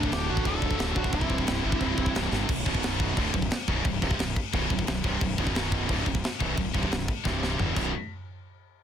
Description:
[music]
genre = heavy metal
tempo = 177 BPM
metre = 4/4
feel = straight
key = B phrygian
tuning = A4 = 439 Hz
[part]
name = high-gain lead guitar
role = melody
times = 0.0-2.1 s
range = D4 to A4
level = -33 LUFS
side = left 1 dB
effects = distortion
[part]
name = high-gain lead guitar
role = second line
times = 0.0-2.1 s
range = A3 to F#4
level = -36 LUFS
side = right 5 dB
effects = distortion
[part]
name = distorted electric guitar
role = riff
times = 0.0-7.9 s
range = B1 to E3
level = -33 LUFS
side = right 11 dB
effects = overdrive
[part]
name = heavy high-gain guitar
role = riff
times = 0.0-7.9 s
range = B1 to E3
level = -33 LUFS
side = left 16 dB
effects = distortion
[part]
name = heavy high-gain guitar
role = riff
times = 0.0-7.9 s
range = B1 to E3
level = -36 LUFS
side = equal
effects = distortion
[part]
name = fuzz fingered electric bass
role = bass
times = 0.0-7.9 s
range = B0 to A1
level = -32 LUFS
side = equal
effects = overdrive
[part]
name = tight metal drum kit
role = drums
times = 0.0-7.8 s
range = crash cymbal, kick drum, snare drum, toms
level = -29 LUFS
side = equal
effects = none
[sound]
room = small room ambience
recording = dense, heavily limited modern master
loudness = -25 LUFS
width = side -9 dB against mid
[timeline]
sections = 0.0-2.5 A section; 2.5-7.9 B section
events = drum fill 2.3, 7.3-7.9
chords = 0.0 D; 1.1 C; 2.5 Bm; 7.3 C5; 7.6 E5; 7.8 B5; 7.9 N.C.

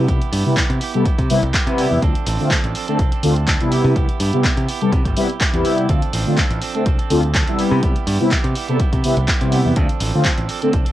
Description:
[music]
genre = filtered disco house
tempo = 124 BPM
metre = 4/4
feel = swing 54% on 16ths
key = unclear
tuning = A4 = 440 Hz
[part]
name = mellow synth brass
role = accompaniment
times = 0.0-10.7 s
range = C3 to A4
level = -18 LUFS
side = left 1 dB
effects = chorus, phaser, sidechain pumping, low-pass filter, cassette tape
[part]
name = direct-recorded clean electric guitar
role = riff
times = 0.0-10.9 s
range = F3 to A4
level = -27 LUFS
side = right 8 dB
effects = sidechain pumping, low-pass filter, cassette tape
[part]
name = modern bright fingered electric bass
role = bass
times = 0.0-10.8 s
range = G1 to C3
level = -20 LUFS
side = equal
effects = tube saturation, sidechain pumping, low-pass filter
[part]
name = electronic kick drum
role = drums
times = 0.1-10.8 s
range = none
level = -20 LUFS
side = equal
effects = none
[part]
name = punchy analog drum machine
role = drums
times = 0.1-10.9 s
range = handclaps, hi-hat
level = -24 LUFS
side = equal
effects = sidechain pumping on hats
[sound]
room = light reverb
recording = home recording on cassette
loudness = -15 LUFS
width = side -14 dB against mid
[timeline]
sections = 0.0-10.9 A section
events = none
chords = 0.0 Cmaj7; 2.0 Dm7; 3.7 Cmaj7; 5.9 Dm7; 7.6 Cmaj7; 9.8 Dm7

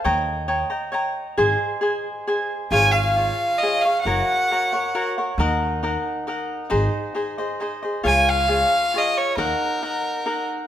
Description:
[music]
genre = mexican folk, mariachi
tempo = 135 BPM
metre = 3/4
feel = straight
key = Db major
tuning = A4 = 436 Hz
[part]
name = cavaquinho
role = accompaniment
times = 0.0-10.7 s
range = Eb4 to Bb5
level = -22 LUFS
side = left 1 dB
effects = none
[part]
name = upright bass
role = bass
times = 0.1-9.5 s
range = Gb1 to Eb2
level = -25 LUFS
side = equal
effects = none
[part]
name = bright violin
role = melody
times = 2.7-5.1, 8.1-10.5 s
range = Bb4 to Ab5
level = -21 LUFS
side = equal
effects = none
[sound]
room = moderate concert hall reverb, RT60 2.1 s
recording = minimal, uncompressed stereo recording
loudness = -19 LUFS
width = side -11 dB against mid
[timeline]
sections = 0.0-10.7 A section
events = none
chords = 0.0 Eb7; 1.4 Ab; 2.7 Db/Ab; 4.1 Gb; 5.4 Ebm; 6.7 Ab; 8.0 Db; 9.4 Ebm

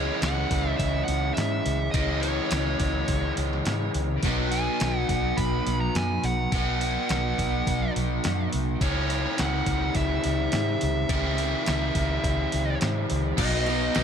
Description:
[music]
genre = rock, shoegaze and dream pop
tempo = 105 BPM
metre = 4/4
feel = straight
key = unclear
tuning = A4 = 440 Hz
[part]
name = fuzz lead guitar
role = melody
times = 0.0-14.0 s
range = C#5 to B5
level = -31 LUFS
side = right 2 dB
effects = distortion, digital delay
[part]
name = biting overdriven guitar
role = riff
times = 0.0-14.0 s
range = B2 to D#4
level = -27 LUFS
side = equal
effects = wide subtle chorus
[part]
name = vintage muted fingered electric bass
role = bass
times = 0.0-14.0 s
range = B1 to G#2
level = -28 LUFS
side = equal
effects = none
[part]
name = detuned 8-bit digital drum machine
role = drums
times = 0.2-14.0 s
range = crash cymbal, hi-hat, kick drum, snare drum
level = -30 LUFS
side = equal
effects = none
[sound]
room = little or no reverb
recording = none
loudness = -23 LUFS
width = side -7 dB against mid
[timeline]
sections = 0.0-13.4 A section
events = none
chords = 0.0 C#m; 4.2 B; 8.8 C#m; 13.4 B

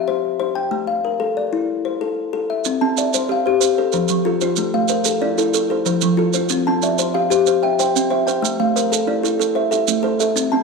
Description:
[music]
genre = southern african traditional, mbira-style interlocking cycle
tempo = 124 BPM (dotted quarters)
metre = 12/8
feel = straight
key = unclear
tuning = A4 = 440 Hz
[part]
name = kalimba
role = arpeggios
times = 0.0-10.6 s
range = F3 to A5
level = -19 LUFS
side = left 7 dB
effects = none
[part]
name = maracas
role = percussion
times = 2.6-10.5 s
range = none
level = -24 LUFS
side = right 14 dB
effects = none
[part]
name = kalimba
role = arpeggios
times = 2.8-10.6 s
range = F3 to G5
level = -20 LUFS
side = right 10 dB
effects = slapback echo
[sound]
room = wet echo chamber reverb, RT60 1.4 s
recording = 1960s-style stereo with parts hard left and right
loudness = -16 LUFS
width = side -4 dB against mid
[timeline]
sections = 0.0-2.7 A section; 2.7-10.6 A section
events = none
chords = 0.0 C; 0.7 Am; 2.7 C; 3.6 F; 4.6 Am; 5.5 F; 6.5 C; 8.4 Am

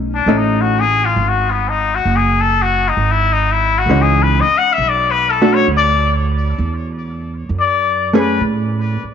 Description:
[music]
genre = jazz ballad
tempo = 66 BPM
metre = 4/4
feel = swing 68% on 8ths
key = unclear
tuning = A4 = 436 Hz
[part]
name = hollow-body jazz guitar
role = accompaniment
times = 0.0-8.4 s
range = E3 to B4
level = -17 LUFS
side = equal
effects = none
[part]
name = upright bass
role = bass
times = 0.0-9.1 s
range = F#1 to A2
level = -18 LUFS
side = right 3 dB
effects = none
[part]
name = trumpet with straight mute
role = melody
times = 0.1-8.4 s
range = B3 to F#5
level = -15 LUFS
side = left 6 dB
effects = tape echo
[sound]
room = moderate plate reverb, RT60 3.2 s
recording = nothing above 7.7 kHz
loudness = -13 LUFS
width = side -8 dB against mid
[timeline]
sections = 0.0-9.1 A section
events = muted trumpet solo 0.0-9.1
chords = 0.0 B9; 1.2 Emaj13; 4.8 Bm7; 6.6 Esus2

